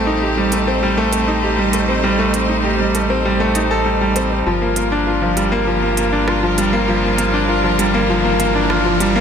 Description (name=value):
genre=piano and strings electronica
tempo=99 BPM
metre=4/4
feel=straight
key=G minor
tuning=A4 = 440 Hz
part: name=clear string quartet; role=sustained chords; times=0.0-9.2 s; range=G3 to C5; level=-22 LUFS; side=equal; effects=none
part: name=bright grand piano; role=riff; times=0.0-9.2 s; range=F3 to A4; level=-16 LUFS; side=equal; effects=tape echo
part: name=round analog bass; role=bass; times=0.0-9.2 s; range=G1 to A1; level=-23 LUFS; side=equal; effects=tube saturation
part: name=organic electronic drum kit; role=drums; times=0.5-9.1 s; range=hi-hat, rim click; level=-25 LUFS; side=right 4 dB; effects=high-pass filter on hats, high-pass filter on snare, high-pass filter on room
part: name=riser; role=sound effects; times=6.3-9.2 s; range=none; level=-26 LUFS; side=right 1 dB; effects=none
room=moderate lush hall reverb, RT60 2.8 s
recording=none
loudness=-14 LUFS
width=side -7 dB against mid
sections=0.0-9.2 A section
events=build-up 0.0-9.2; riser 6.3-9.2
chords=0.0 Am7b5; 4.5 Gm7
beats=0.22 0.83 1.43 | 2.04 2.65 3.25 3.86 | 4.46 5.07 5.67 6.28 | 6.89 7.49 8.10 8.71